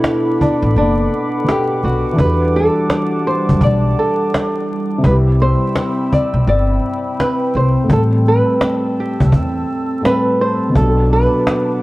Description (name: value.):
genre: lo-fi hip hop.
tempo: 84 BPM.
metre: 4/4.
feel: swing 62% on 16ths.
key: A dorian.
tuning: A4 = 440 Hz.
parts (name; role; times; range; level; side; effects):
nylon-string guitar; melody; 0.0-11.8 s; D4 to D5; -18 LUFS; right 1 dB; low-pass filter.
felt-muted upright piano; accompaniment; 0.0-11.8 s; A2 to A4; -20 LUFS; left 1 dB; cassette tape, low-pass filter.
warbly tape-like pad; sustained chords; 0.0-11.8 s; G3 to E6; -22 LUFS; equal; chorus, built-in reverb, low-pass filter.
cajon; drums; 0.0-11.8 s; none; -18 LUFS; equal; vintage 12-bit sampler grit.
upright bass; bass; 0.6-11.2 s; F#1 to F#2; -16 LUFS; equal; transformer saturation.
room: light reverb, studio reverb.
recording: dry, gritty hardware recording, vinyl crackle.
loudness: -13 LUFS.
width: side -18 dB against mid.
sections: 0.0-11.8 A section.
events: none.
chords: 0.0 Bm7; 2.2 Em11; 5.0 Cmaj7; 7.9 Am7; 10.8 Bm7.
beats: 0.04 0.76 1.47 | 2.18 2.90 3.61 4.33 | 5.04 5.75 6.47 7.18 | 7.90 8.61 9.33 10.04 | 10.76 11.47.